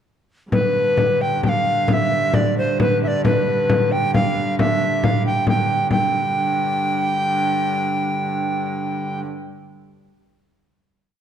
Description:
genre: medieval dance.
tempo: 131-145 BPM.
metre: 3/4.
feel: straight.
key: G mixolydian.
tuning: A4 = 439 Hz.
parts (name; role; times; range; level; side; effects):
bright reedy tenor recorder; melody; 0.5-9.2 s; B4 to G5; -20 LUFS; equal; none.
rich hurdy-gurdy; drone; 0.5-9.2 s; G2 to D3; -25 LUFS; right 1 dB; none.
frame drum; percussion; 0.5-6.1 s; none; -21 LUFS; left 1 dB; none.
room: wet recital hall reverb, RT60 1.5 s.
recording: dark, warm production.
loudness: -17 LUFS.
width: side -8 dB against mid.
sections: 0.5-5.9 A section; 5.9-8.4 final chord.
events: speeding up 0.5-8.4.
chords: none.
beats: | 0.52 0.98 1.44 | 1.89 2.35 2.80 | 3.25 3.70 4.15 | 4.59 5.03 5.47 | 5.90 6.33 6.76 | 7.19 7.61 8.03.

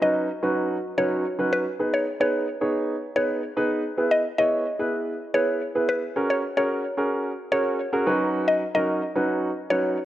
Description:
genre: dance-pop.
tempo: 110 BPM.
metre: 4/4.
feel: straight.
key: B major.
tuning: A4 = 440 Hz.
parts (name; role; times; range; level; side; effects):
mallet-like synth pluck; melody; 0.0-9.9 s; B4 to D#5; -25 LUFS; left 1 dB; chorus, tape echo.
warm grand piano; accompaniment; 0.0-10.0 s; F#3 to C#5; -24 LUFS; right 1 dB; none.
room: moderate lush hall reverb, RT60 2.5 s.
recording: worn, warbling old tape, cassette tape, warbly pitch drift.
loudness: -22 LUFS.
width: side -13 dB against mid.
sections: 0.0-10.1 A section.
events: none.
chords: 0.0 Badd9/F#; 1.8 G#m; 4.0 E; 6.2 F#add9; 8.1 Badd9/F#.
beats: 0.16 0.70 1.25 | 1.80 2.34 2.89 3.43 | 3.98 4.52 5.07 5.61 | 6.16 6.71 7.25 7.80 | 8.34 8.89 9.43.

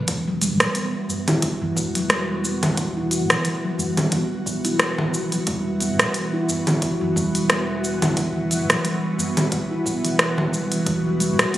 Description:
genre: organic downtempo.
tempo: 89 BPM.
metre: 4/4.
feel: swing 56% on 16ths.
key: E minor.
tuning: A4 = 442 Hz.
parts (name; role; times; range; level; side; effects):
ethereal airy pad; sustained chords; 0.1-11.6 s; E3 to B4; -28 LUFS; equal; ensemble chorus, built-in reverb, phaser, sidechain pumping.
steel tongue drum; arpeggios; 0.1-11.6 s; E3 to E4; -24 LUFS; right 1 dB; ping-pong delay.
mellow fretless electric bass; bass; 0.1-11.5 s; E1 to B1; -31 LUFS; equal; sidechain pumping.
electronic kick drum; drums; 0.1-11.0 s; none; -31 LUFS; equal; none.
organic electronic drum kit; drums; 0.1-11.6 s; congas, hi-hat, rim click, shaker; -22 LUFS; equal; none.
udu; percussion; 1.1-9.3 s; none; -37 LUFS; equal; none.
room: wet concert hall reverb, RT60 2.1 s.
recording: recorded on a phone in the room, studio reverb.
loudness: -19 LUFS.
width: side -14 dB against mid.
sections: 0.1-11.6 A section.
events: none.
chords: 0.1 Emadd9.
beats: | 0.08 0.76 1.43 2.10 | 2.78 3.45 4.13 4.80 | 5.47 6.15 6.82 7.50 | 8.17 8.85 9.52 10.19 | 10.87 11.54.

